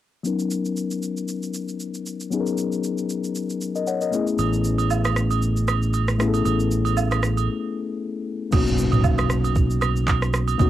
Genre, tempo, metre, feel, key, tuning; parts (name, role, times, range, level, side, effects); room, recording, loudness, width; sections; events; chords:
amapiano; 116 BPM; 4/4; swing 55% on 16ths; B major; A4 = 440 Hz
mellow tine electric piano; accompaniment; 0.2-10.7 s; F#3 to F#5; -24 LUFS; left 5 dB; low-pass filter, cassette tape
smooth R&B drum kit; drums; 0.2-10.7 s; crash cymbal, handclaps, kick drum, rim click, shaker, toms; -26 LUFS; right 2 dB
fingered electric bass; bass; 4.4-10.7 s; A1 to B1; -22 LUFS; right 2 dB
agogo bells and woodblock; percussion; 4.4-10.7 s; -28 LUFS; right 12 dB
impact; sound effects; 8.5-10.6 s; -29 LUFS; right 2 dB
light reverb; home recording on cassette; -20 LUFS; side -13 dB against mid
0.2-8.5 A section; 8.5-10.7 B section
break 7.5-8.5; impact 8.5-10.6
0.2 Bmaj9; 4.1 Amaj9; 8.5 Bmaj9